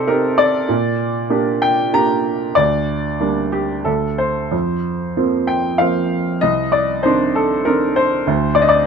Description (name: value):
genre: classical, lyrical solo piano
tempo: 91-101 BPM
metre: 3/4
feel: rubato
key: G minor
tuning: A4 = 440 Hz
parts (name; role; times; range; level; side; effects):
- clear upright piano; solo; 0.0-8.9 s; C2 to Bb5; -15 LUFS; equal; none
room: light reverb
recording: none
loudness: -15 LUFS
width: side -6 dB against mid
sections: 0.0-8.9 A section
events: none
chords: 0.0 Cm; 0.7 Gm/Bb; 2.6 Gm/D; 3.9 N.C.; 4.5 Fsus4; 6.4 Cmadd9; 8.3 D7(no3)